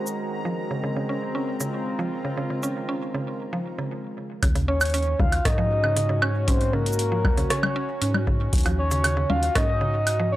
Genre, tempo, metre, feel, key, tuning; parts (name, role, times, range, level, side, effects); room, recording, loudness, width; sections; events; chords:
IDM; 117 BPM; 4/4; straight; Eb dorian; A4 = 440 Hz
warbly nostalgic lead; melody; 0.0-0.1, 4.7-10.4 s; Bb4 to F5; -27 LUFS; left 1 dB; chorus, vintage 12-bit sampler grit, analog delay
warbly tape-like pad; sustained chords; 0.0-10.4 s; Eb3 to Bb4; -32 LUFS; equal; chorus, built-in reverb
bubbling stepped-filter texture; texture; 0.0-3.9 s; Bb5; -40 LUFS; equal; chorus, built-in reverb, sidechain pumping
booming analog drum machine; drums; 0.1-10.2 s; congas, hi-hat, rim click, shaker, woodblock; -26 LUFS; equal
mallet-like synth pluck; arpeggios; 0.5-10.2 s; Db3 to Db4; -30 LUFS; right 2 dB; chorus, vintage 12-bit sampler grit, tape echo
round analog bass; bass; 4.4-10.4 s; Eb2 to Ab2; -25 LUFS; equal; transformer saturation
electronic kick drum; drums; 4.4-9.7 s; -24 LUFS; equal
digital ambience; dry, gritty hardware recording, transformer saturation; -22 LUFS; side -15 dB against mid
0.0-4.4 A section; 4.4-10.4 B section
0.0 Ebm9